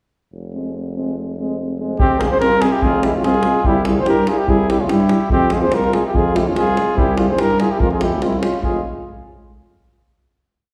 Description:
balkan folk, Balkan brass band; 145 BPM; 2/4; straight; F harmonic minor; A4 = 442 Hz
warm tuba; bass; 0.3-8.8 s; F1 to G2; -24 LUFS; equal
dark euphonium; accompaniment; 0.5-8.8 s; C4 to F4; -26 LUFS; equal
warm euphonium; accompaniment; 0.5-8.8 s; G3 to Ab3; -28 LUFS; equal
dark cornet; melody; 2.0-8.8 s; E4 to C5; -21 LUFS; equal
mellow flugelhorn; second line; 2.0-8.8 s; C4 to Ab4; -26 LUFS; equal
davul; percussion; 2.0-8.8 s; -25 LUFS; equal
wet recital hall reverb, RT60 1.5 s; heard from further back in the room; -17 LUFS; mono
0.3-2.0 intro; 2.0-8.6 A section; 8.6-9.5 final chord
0.3 Fm; 3.7 C; 5.3 Fm; 7.0 C; 7.8 Fm

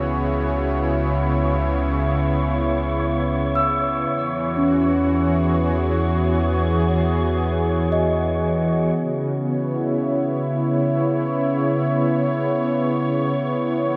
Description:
ambient; free time; C# minor; A4 = 445 Hz
warm analog pad; sustained chords; 0.0-14.0 s; C#3 to C#5; -22 LUFS; equal; chorus, tremolo
warm sub bass; bass; 0.0-8.9 s; C#2 to E2; -27 LUFS; equal
wind-like tuned noise texture; texture; 0.2-14.0 s; C#5 to C#6; -36 LUFS; equal; built-in reverb
large celesta; arpeggios; 3.6-13.9 s; C#4 to E6; -28 LUFS; equal; tape echo
wet cathedral reverb, RT60 5.2 s; in a vast, echoing space; -21 LUFS; mono
0.0-9.0 A section; 9.0-14.0 B section
fade-in on synth texture 9.0-14.0
0.0 C#m7; 4.1 E6; 9.0 C#m7

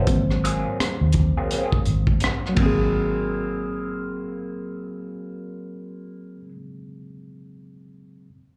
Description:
R&B, neo-soul; 84 BPM; 4/4; swing 60% on 16ths; A4 = 440 Hz
electric guitar through a small old amp; second line; 0.0-6.5 s; F#3 to G#4; -34 LUFS; equal; wah, phaser, slapback echo
tine electric piano; accompaniment; 0.0-8.3 s; F#3 to B#4; -30 LUFS; equal; slapback echo
vintage muted fingered electric bass; bass; 0.1-6.4 s; G#1 to D#2; -26 LUFS; equal
crunchy breakbeat drum kit; drums; 0.1-2.8 s; hi-hat, kick drum, ride cymbal, rim click; -26 LUFS; equal
little or no reverb; live gig heard through the venue's PA, club reverb; -23 LUFS; mono
0.0-2.9 A section; 2.9-5.8 B section
tine electric piano solo 0.0-2.9
0.1 G#9

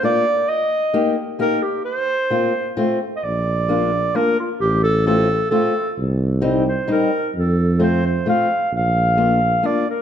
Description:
alpine folk, alpine dance band; 132 BPM; 3/4; rubato; Bb major; A4 = 440 Hz
warm clarinet; melody; 0.0-10.0 s; F4 to F5; -19 LUFS; right 1 dB
fingerpicked old ladder-braced acoustic guitar; accompaniment; 0.0-9.8 s; G3 to G4; -21 LUFS; left 3 dB
mellow tuba; bass; 3.2-9.6 s; A1 to F2; -20 LUFS; right 1 dB
light reverb; dark, warm production; -16 LUFS; side -9 dB against mid
0.0-10.0 A section
0.5 Eb; 1.9 Fsus4; 2.8 F; 3.2 Bb; 4.6 F/A; 6.0 Cm7; 7.3 F; 8.7 Bb

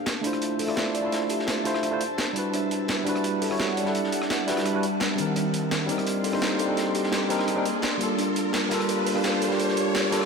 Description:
liquid drum and bass; 170 BPM; 4/4; straight; A4 = 439 Hz
ethereal airy pad; sustained chords; 0.0-10.3 s; G3 to C6; -31 LUFS; left 1 dB; ensemble chorus, built-in reverb
long sustained 808-style bass; bass; 0.0-10.3 s; D1 to F2; -49 LUFS; equal
riser; sound effects; 2.3-10.3 s; -34 LUFS; right 1 dB
breakbeat sampler-style drum kit; drums; 0.1-10.3 s; hi-hat, rim click, snare drum; -31 LUFS; right 1 dB; high-pass filter on hats, high-pass filter on snare
crunchy breakbeat drum kit; drums; 0.1-10.3 s; hi-hat, snare drum; -35 LUFS; equal; high-pass filter on hats, high-pass filter on snare, high-pass filter on room
tine electric piano; accompaniment; 0.2-10.3 s; Eb3 to F#5; -26 LUFS; equal; medium stereo tremolo, ping-pong delay
buzzing kalimba; arpeggios; 0.2-9.9 s; D4 to D5; -32 LUFS; equal; vintage 12-bit sampler grit, low-pass filter, ping-pong delay
wet plate reverb, RT60 2.2 s; -23 LUFS; side -5 dB against mid
0.0-10.3 A section
build-up 0.0-10.3; riser 2.3-10.3
0.0 Dm9; 2.5 Em9; 5.4 Cm9; 8.2 Gm9

